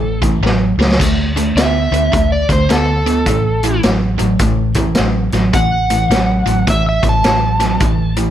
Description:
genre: blues rock power trio and southern rock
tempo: 106 BPM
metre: 4/4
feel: swing 63% on 8ths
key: unclear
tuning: A4 = 439 Hz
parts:
  - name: overdriven slide guitar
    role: melody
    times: 0.0-8.2 s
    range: A4 to A5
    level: -18 LUFS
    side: right 1 dB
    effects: none
  - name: biting overdriven guitar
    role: riff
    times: 0.0-8.3 s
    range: A2 to B3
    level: -17 LUFS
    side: right 1 dB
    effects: none
  - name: vintage muted fingered electric bass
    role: bass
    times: 0.0-8.3 s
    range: A1 to D2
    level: -18 LUFS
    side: equal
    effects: none
  - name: raw garage drum kit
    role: drums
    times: 0.2-8.3 s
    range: crash cymbal, hi-hat, kick drum, snare drum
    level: -17 LUFS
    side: equal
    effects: none
room: light reverb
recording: none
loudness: -12 LUFS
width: side -11 dB against mid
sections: 0.0-8.3 A section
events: drum fill 0.4-1.0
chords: 0.0 A; 1.0 D5; 3.3 A5

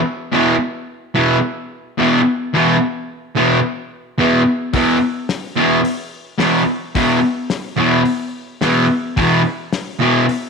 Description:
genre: garage rock duo or trio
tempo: 108 BPM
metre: 4/4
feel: straight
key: unclear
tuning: A4 = 439 Hz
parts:
  - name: fuzz guitar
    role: riff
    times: 0.3-10.2 s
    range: E2 to E3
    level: -14 LUFS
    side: equal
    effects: distortion
  - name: cloth-damped thuddy drum kit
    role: drums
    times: 4.7-10.4 s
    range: hi-hat, kick drum, snare drum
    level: -25 LUFS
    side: left 4 dB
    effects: none
room: moderate plate reverb, RT60 1.5 s, studio reverb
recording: 1960s-style stereo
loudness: -14 LUFS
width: side -5 dB against mid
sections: 0.0-10.5 A section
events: none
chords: 0.0 E5

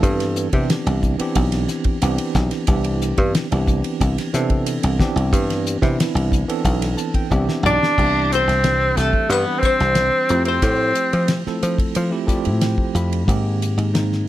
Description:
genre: electric jazz fusion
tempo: 91 BPM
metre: 4/4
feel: straight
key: C major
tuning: A4 = 438 Hz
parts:
  - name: bell-like tine electric piano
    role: accompaniment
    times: 0.0-14.3 s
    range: Eb3 to B5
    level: -24 LUFS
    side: right 2 dB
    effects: medium stereo tremolo, plate reverb
  - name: dry thumbed slap bass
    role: bass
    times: 0.0-14.2 s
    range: B1 to F3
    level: -20 LUFS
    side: equal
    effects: none
  - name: damped 70s drum kit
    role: drums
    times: 0.0-14.2 s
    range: crash cymbal, hi-hat, kick drum, ride cymbal, snare drum, toms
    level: -23 LUFS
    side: equal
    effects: none
  - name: clear tenor saxophone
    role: melody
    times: 7.7-11.4 s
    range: A3 to D4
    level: -18 LUFS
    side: equal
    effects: plate reverb
  - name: archtop guitar, miked and amplified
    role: second line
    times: 7.7-11.4 s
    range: A4 to D5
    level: -26 LUFS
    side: left 8 dB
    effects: plate reverb
room: light reverb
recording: none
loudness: -16 LUFS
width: side -14 dB against mid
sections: 0.0-8.0 A section; 8.0-14.3 B section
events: tine electric piano fill 6.6-8.0, 11.9-13.3; drum fill 7.3-8.0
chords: 0.0 Cmaj9; 10.3 Fmaj9; 13.3 Abmaj9

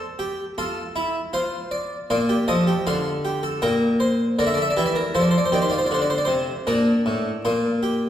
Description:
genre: classical, baroque-style 3-part fugue for harpsichord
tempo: 79 BPM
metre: 4/4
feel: straight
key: Bb major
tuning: A4 = 438 Hz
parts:
  - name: harpsichord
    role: solo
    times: 0.0-8.1 s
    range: A2 to G5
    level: -20 LUFS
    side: equal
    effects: none
room: wet recital hall reverb, RT60 1.6 s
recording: heard from further back in the room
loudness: -20 LUFS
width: side -11 dB against mid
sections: 0.0-8.1 A section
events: none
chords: 0.0 C5; 0.6 F; 2.1 Bb; 3.6 C7/Bb; 5.1 F7; 6.7 Bb

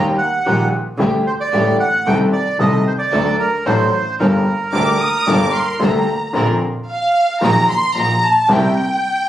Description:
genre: tango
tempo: 112 BPM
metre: 4/4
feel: rubato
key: G harmonic minor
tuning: A4 = 439 Hz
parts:
  - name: bandoneon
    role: melody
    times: 0.0-5.8 s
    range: Bb4 to G5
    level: -19 LUFS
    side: right 3 dB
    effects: none
  - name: warm concert grand piano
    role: accompaniment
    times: 0.0-8.7 s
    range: G1 to A4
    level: -18 LUFS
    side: left 1 dB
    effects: none
  - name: rich chamber string section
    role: stabs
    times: 0.0-8.7 s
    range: A3 to Bb4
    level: -28 LUFS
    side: equal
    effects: none
  - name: clear double bass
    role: bass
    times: 0.0-8.7 s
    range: G1 to Eb2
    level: -20 LUFS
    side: equal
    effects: none
  - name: warm studio violin section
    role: second line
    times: 4.7-9.3 s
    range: F5 to Eb6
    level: -16 LUFS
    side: equal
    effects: none
room: moderate studio reverb, RT60 0.8 s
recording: recorded on a phone in the room, club reverb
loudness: -14 LUFS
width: side -12 dB against mid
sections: 0.0-6.3 A section; 6.3-9.3 B section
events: violin section solo 6.3-9.3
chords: 0.0 Eb; 1.0 Dsus4; 2.1 Adim/C; 3.1 D; 4.2 Gmadd9; 6.3 Bbadd9; 7.4 Ebm/Bb; 8.5 C7

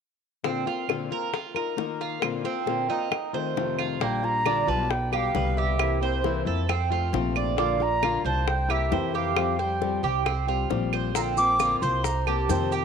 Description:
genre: latin, Cuban son and guajira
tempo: 134 BPM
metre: 4/4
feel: straight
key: Bb major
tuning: A4 = 438 Hz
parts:
  - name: flamenco guitar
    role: accompaniment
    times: 0.4-12.8 s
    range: F2 to Bb4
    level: -30 LUFS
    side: left 10 dB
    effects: none
  - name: Cuban tres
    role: arpeggios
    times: 0.4-12.8 s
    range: Bb3 to D5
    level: -29 LUFS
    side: right 12 dB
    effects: none
  - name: bongos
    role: percussion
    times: 0.4-12.8 s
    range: none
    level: -33 LUFS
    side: left 14 dB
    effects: none
  - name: claves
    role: percussion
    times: 0.9-12.5 s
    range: none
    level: -31 LUFS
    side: right 15 dB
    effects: none
  - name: concert flute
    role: melody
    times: 4.0-12.7 s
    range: C5 to D6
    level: -27 LUFS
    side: equal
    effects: none
  - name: upright bass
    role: bass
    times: 4.0-12.8 s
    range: Bb1 to F2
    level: -29 LUFS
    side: right 1 dB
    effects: none
  - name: maracas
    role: percussion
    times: 11.2-12.8 s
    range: none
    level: -38 LUFS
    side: right 17 dB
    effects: none
room: light reverb, small room ambience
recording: 1960s-style stereo with parts hard left and right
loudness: -23 LUFS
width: side -6 dB against mid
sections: 0.5-4.0 A section; 4.0-12.8 B section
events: none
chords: 0.5 Bbadd9; 1.3 Ebsus2; 2.2 Bbadd9; 3.1 F7; 4.0 Bb6; 4.9 G/B; 5.8 C7; 6.7 F; 7.6 Bb; 8.5 C7; 9.4 Fsus2; 11.2 Bbadd9; 12.0 Cm7

